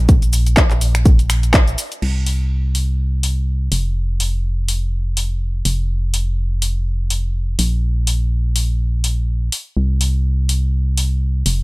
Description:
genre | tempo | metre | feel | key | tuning
piano house | 124 BPM | 4/4 | swing 56% on 16ths | unclear | A4 = 440 Hz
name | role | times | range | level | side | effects
organ-like FM bass | bass | 0.0-11.6 s | F1 to C2 | -17 LUFS | equal | tube saturation, sidechain pumping
electronic kick drum | drums | 0.1-1.6 s | none | -11 LUFS | equal | none
punchy analog drum machine | drums | 0.1-11.6 s | crash cymbal, finger snaps, handclaps, hi-hat, shaker | -21 LUFS | left 1 dB | none
room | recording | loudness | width
little or no reverb | none | -16 LUFS | side -23 dB against mid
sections
0.0-2.0 A section; 2.0-11.6 B section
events
none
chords
none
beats
| 0.09 0.57 1.06 1.54 | 2.02 2.51 2.99 3.48 | 3.96 4.44 4.93 5.41 | 5.89 6.38 6.86 7.35 | 7.83 8.31 8.80 9.28 | 9.77 10.25 10.73 11.22

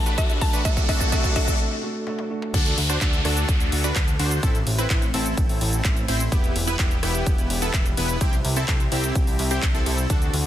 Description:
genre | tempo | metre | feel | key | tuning
EDM, festival progressive house | 127 BPM | 4/4 | straight | unclear | A4 = 440 Hz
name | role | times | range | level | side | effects
mallet-like synth pluck | melody | 0.0-1.5 s | E5 to A5 | -30 LUFS | left 2 dB | chorus, tape echo
dark grand piano | accompaniment | 0.0-2.5 s | A3 to A4 | -31 LUFS | right 2 dB | sidechain pumping, tape echo
lush unison pad | sustained chords | 0.0-10.5 s | C3 to B4 | -34 LUFS | equal | chorus, sidechain pumping
fat analog bass | bass | 0.0-10.5 s | E1 to D2 | -26 LUFS | equal | sidechain pumping, high-pass filter
riser and downlifter | sound effects | 0.0-6.3 s | none | -30 LUFS | equal | none
supersaw stab | riff | 0.1-10.3 s | B3 to C5 | -28 LUFS | equal | sidechain pumping, tape echo
big-room dance drum kit | drums | 0.1-10.4 s | crash cymbal, handclaps, hi-hat, ride cymbal, rim click, shaker, toms | -29 LUFS | equal | high-pass filter on hats, studio reverb, high-pass filter on perc, high-pass filter on toms, high-pass filter on cymbals, high-pass filter on snare
electronic kick drum | drums | 0.2-10.2 s | none | -22 LUFS | equal | studio reverb
room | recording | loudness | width
light reverb, digital ambience | dense, heavily limited modern master | -20 LUFS | side -12 dB against mid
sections
0.0-2.5 A section; 2.5-10.5 B section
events
build-up 0.0-2.5; drum fill 0.0-1.6, 2.1-2.5; riser 0.0-1.6; break 1.6-2.5; drop 2.5-10.5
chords
0.0 Em; 0.7 C; 2.5 D; 4.4 Am; 6.3 Em; 8.2 C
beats
0.18 | 0.65 1.12 1.60 2.07 | 2.54 3.01 3.49 3.96 | 4.43 4.90 5.38 5.85 | 6.32 6.79 7.27 7.74 | 8.21 8.68 9.15 9.63 | 10.10

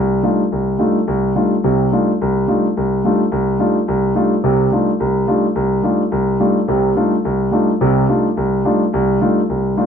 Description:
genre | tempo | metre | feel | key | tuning
jazz | 214 BPM | 4/4 | swing 62% on 8ths | F mixolydian | A4 = 441 Hz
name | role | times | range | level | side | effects
warm grand piano | solo | 0.0-9.9 s | C2 to F4 | -14 LUFS | equal | none
room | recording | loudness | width
moderate stone room reverb, RT60 1.0 s | band playing live in one room | -14 LUFS | side -7 dB against mid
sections
0.0-9.9 A section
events
none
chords
0.0 F13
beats
0.23 0.51 0.79 | 1.07 1.35 1.63 1.91 | 2.19 2.47 2.75 3.03 | 3.31 3.59 3.87 4.15 | 4.43 4.71 4.99 5.27 | 5.55 5.83 6.11 6.39 | 6.67 6.95 7.23 7.51 | 7.80 8.08 8.36 8.64 | 8.92 9.20 9.48 9.77

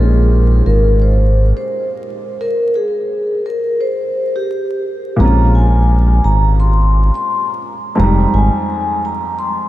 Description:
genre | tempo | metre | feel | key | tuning
hip hop, boom-bap hip-hop | 86 BPM | 4/4 | swing 60% on 16ths | Bb dorian | A4 = 440 Hz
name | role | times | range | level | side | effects
vibraphone with soft mallets | melody | 0.0-9.7 s | G4 to C6 | -18 LUFS | equal | high-pass filter, low-pass filter, ping-pong delay
dark upright piano | accompaniment | 0.0-9.7 s | F2 to C5 | -20 LUFS | equal | cassette tape, high-pass filter, low-pass filter
round analog bass | bass | 0.0-8.5 s | F1 to Bb1 | -11 LUFS | equal | none
room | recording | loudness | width
moderate huge ambient reverb, RT60 8.4 s | dreamy mix soaked in reverb, vinyl crackle | -12 LUFS | side -15 dB against mid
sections
0.0-5.2 A section; 5.2-9.7 B section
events
stop 2.4-5.2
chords
0.0 Bbm9; 2.4 N.C.; 5.2 Bbm9; 8.0 Fm9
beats
0.32 1.01 1.71 | 2.41 3.11 3.81 4.50 | 5.20 5.90 6.60 7.29 | 7.99 8.69 9.39

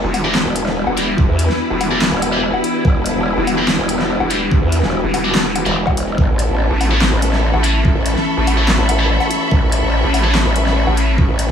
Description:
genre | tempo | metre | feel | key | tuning
heavy wobble dubstep | 144 BPM | 4/4 | half-time | E dorian | A4 = 440 Hz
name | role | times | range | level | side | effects
evolving wavetable pad | sustained chords | 0.0-11.5 s | E3 to G4 | -22 LUFS | left 1 dB | chorus, built-in reverb, vintage 12-bit sampler grit, sidechain pumping
vowel-sweep wobble bass | bass | 0.0-11.3 s | E1 to A1 | -18 LUFS | equal | chorus, overdrive
clear symphonic string section | texture | 0.0-11.5 s | E4 to C#6 | -22 LUFS | equal | sidechain pumping
dubstep drum kit | drums | 0.1-11.5 s | handclaps, hi-hat, snare drum, woodblock | -20 LUFS | left 1 dB | overdrive, studio ambience
high-gain distorted guitar | stabs | 0.2-10.3 s | E4 to D5 | -24 LUFS | equal | distortion, vintage 12-bit sampler grit, tape echo
growl bass | bass | 0.5-11.5 s | E1 to E2 | -17 LUFS | equal | chorus, overdrive
electronic kick drum | drums | 1.2-11.3 s | none | -15 LUFS | equal | overdrive, studio ambience
zap | sound effects | 9.2-9.3 s | none | -29 LUFS | equal | none
room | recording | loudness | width
light reverb, digital ambience | studio ambience | -13 LUFS | side -8 dB against mid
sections
0.0-11.5 A section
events
none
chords
0.0 Em7; 6.2 A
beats
0.35 0.77 | 1.18 1.60 2.02 2.43 | 2.85 3.27 3.68 4.10 | 4.51 4.93 5.35 5.76 | 6.18 6.60 7.01 7.43 | 7.85 8.27 8.68 9.10 | 9.52 9.93 10.35 10.77 | 11.18

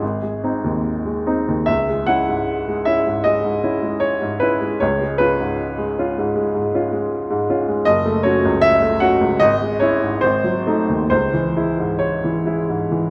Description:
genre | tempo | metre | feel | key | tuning
classical, romantic character piece for solo piano | 76 BPM | 4/4 | uneven beats, rubato | C# minor | A4 = 440 Hz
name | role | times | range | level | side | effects
bright upright piano | solo | 0.0-13.1 s | F#1 to F#5 | -19 LUFS | equal | none
room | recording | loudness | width
wet recital hall reverb, RT60 1.9 s | dark, warm production | -19 LUFS | mono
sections
0.0-13.1 A section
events
none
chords
0.0 G#; 1.7 C#m; 4.8 C#7; 7.9 F#m; 9.4 C#m/G#; 10.2 G#7b9; 11.1 C#m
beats
0.02 0.84 | 1.67 2.48 3.26 4.03 | 4.80 5.59 6.35 7.11 | 7.86 8.62 9.40 10.22 | 11.10 12.01 12.91

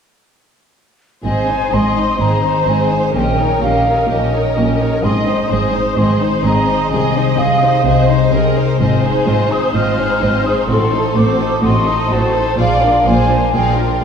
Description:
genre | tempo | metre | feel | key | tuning
classical, dramatic, fast romantic movement for symphony orchestra | 127 BPM | 4/4 | straight | Ab major | A4 = 442 Hz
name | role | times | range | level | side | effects
dark symphonic violin section | melody | 1.2-14.0 s | A4 to Eb5 | -24 LUFS | left 3 dB | none
clear studio violin section | second line | 1.2-14.0 s | C4 to C5 | -21 LUFS | left 2 dB | none
concert flute | second line | 1.2-14.0 s | Eb5 to F6 | -18 LUFS | equal | none
warm symphonic viola section | accompaniment | 1.2-14.0 s | A4 to Eb5 | -21 LUFS | right 2 dB | none
concert harp | arpeggios | 1.2-14.0 s | Ab2 to Ab4 | -21 LUFS | left 5 dB | none
rich symphonic cello section | bass | 1.2-13.9 s | Ab2 to C3 | -20 LUFS | right 2 dB | none
rich symphonic double bass section | bass | 1.2-13.9 s | Ab1 to C2 | -20 LUFS | right 2 dB | none
room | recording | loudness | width
wet scoring stage reverb, RT60 1.5 s | heard from further back in the room | -12 LUFS | side -7 dB against mid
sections
1.2-14.0 A section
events
none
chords
1.2 Ab; 3.1 Eb7/Bb; 5.0 Ab; 6.9 Ab/C; 8.8 Fm7/Ab; 10.7 Adim7; 12.6 Bb7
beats
| 1.24 1.72 2.20 2.67 | 3.15 3.62 4.10 4.57 | 5.04 5.51 5.98 6.45 | 6.92 7.38 7.85 8.32 | 8.80 9.27 9.74 10.21 | 10.69 11.16 11.63 12.11 | 12.59 13.06 13.54 14.03

